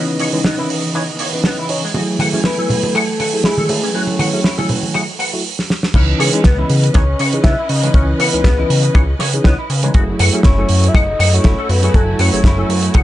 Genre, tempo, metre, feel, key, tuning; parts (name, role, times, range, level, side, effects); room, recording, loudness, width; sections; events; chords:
nu-disco, nu disco; 120 BPM; 4/4; swing 55% on 16ths; A4 = 438 Hz
soft octave-layered synth lead; melody; 0.0-13.0 s; D#4 to E5; -22 LUFS; left 2 dB; chorus, tape echo
tine electric piano; accompaniment; 0.0-13.0 s; E3 to G#5; -21 LUFS; equal; phaser, slapback echo
rich symphonic string section; sustained chords; 0.0-13.0 s; C#3 to G#5; -26 LUFS; right 1 dB; sidechain pumping, low-pass filter
electric guitar with an envelope filter; riff; 0.2-13.0 s; G#3 to F#5; -22 LUFS; left 3 dB; ensemble chorus, low-pass filter, slapback echo
damped 70s drum kit; drums; 0.2-13.0 s; crash cymbal, hi-hat, snare drum; -19 LUFS; right 2 dB
congas; percussion; 1.9-5.1 s; -21 LUFS; right 2 dB
chorused synth bass; bass; 5.9-13.0 s; F#1 to C#3; -16 LUFS; equal
kick drum; drums; 5.9-13.0 s; -12 LUFS; equal
little or no reverb; nothing above 10.3 kHz; -12 LUFS; side -14 dB against mid
0.0-5.9 A section; 5.9-13.0 B section
filter sweep on clean electric guitar 0.0-5.9; drum fill 5.6-5.9; drop 5.9-13.0
0.0 C#m9; 1.9 F#m9; 5.9 C#m9; 9.9 F#m9